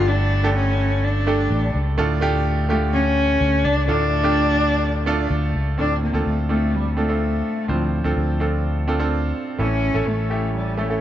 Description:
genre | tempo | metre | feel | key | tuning
piano-driven pop | 126 BPM | 4/4 | straight | D harmonic minor, D minor from 5.8 s | A4 = 440 Hz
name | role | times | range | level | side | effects
dark cello | melody | 0.0-11.0 s | F3 to F4 | -23 LUFS | left 1 dB | none
bright grand piano | accompaniment | 0.0-11.0 s | G2 to C5 | -24 LUFS | right 3 dB | none
fingered electric bass | bass | 0.0-11.0 s | G1 to D2 | -22 LUFS | equal | none
room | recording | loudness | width
light reverb | nothing above 7.7 kHz | -18 LUFS | side -11 dB against mid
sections
0.0-5.8 A section; 5.8-11.0 B section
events
none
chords
0.0 Gsus2; 2.0 Dm; 5.8 Dm7; 9.6 A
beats
| 0.08 0.55 1.03 1.50 | 1.98 2.45 2.93 3.40 | 3.88 4.35 4.83 5.30 | 5.78 6.25 6.73 7.21 | 7.68 8.16 8.64 9.11 | 9.59 10.07 10.54

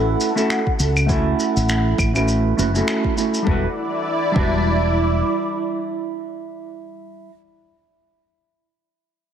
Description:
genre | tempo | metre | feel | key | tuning
sunset chillout | 101 BPM | 4/4 | swing 57% on 16ths | E dorian | A4 = 440 Hz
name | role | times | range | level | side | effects
hollow-body jazz guitar | accompaniment | 0.0-7.3 s | G3 to B4 | -22 LUFS | moving between left 1 dB and right 6 dB | auto-pan, low-pass filter, ping-pong delay
lush unison pad | sustained chords | 0.0-6.6 s | E4 to E6 | -24 LUFS | equal | chorus, phaser
mellow fretless electric bass | bass | 0.0-5.2 s | E1 to C#2 | -20 LUFS | equal | none
shaker, finger snaps and claves | drums | 0.2-3.4 s | none | -26 LUFS | equal | none
electronic kick drum | drums | 0.7-4.6 s | none | -22 LUFS | equal | overdrive
room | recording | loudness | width
moderate plate reverb, RT60 2.0 s, small room ambience | heavily compressed radio sound, multiband compression | -17 LUFS | side -8 dB against mid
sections
0.0-3.5 A section; 3.5-5.8 B section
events
filter sweep on fretless electric bass 0.0-3.5; filter sweep on hollow-body jazz guitar 0.0-3.5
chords
0.0 F#m7; 3.5 Em7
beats
0.50 | 1.09 1.69 2.28 2.87 | 3.47 4.06 4.66 5.25

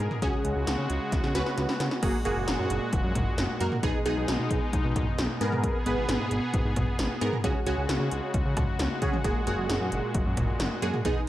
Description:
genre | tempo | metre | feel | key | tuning
synth-pop | 133 BPM | 4/4 | straight | F# major | A4 = 440 Hz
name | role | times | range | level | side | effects
funky polysynth comp | accompaniment | 0.0-11.2 s | A#3 to B4 | -31 LUFS | right 1 dB | chorus, shimmer reverb
brassy analog pad | sustained chords | 0.0-11.3 s | A#2 to A#4 | -32 LUFS | left 1 dB | chorus, shimmer reverb
fat analog bass | bass | 0.0-11.1 s | F#1 to C#3 | -30 LUFS | equal | none
80s electronic pad drums | drums | 0.0-11.2 s | cowbell, crash cymbal, hi-hat, kick drum, snare drum, toms | -29 LUFS | equal | gated reverb on snare and toms, gated reverb
room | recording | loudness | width
light reverb, digital ambience | none | -25 LUFS | side -14 dB against mid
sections
0.0-2.0 A section; 2.0-11.3 B section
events
drum fill 1.1-2.0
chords
0.2 C#sus4; 2.0 F#add9; 3.8 B6; 5.4 G#madd9; 7.4 C#sus4; 9.2 F#add9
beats
| 0.22 0.67 1.12 1.57 | 2.03 2.48 2.93 3.38 | 3.83 4.28 4.73 5.18 | 5.63 6.09 6.54 6.99 | 7.44 7.89 8.34 8.79 | 9.24 9.70 10.15 10.60 | 11.05

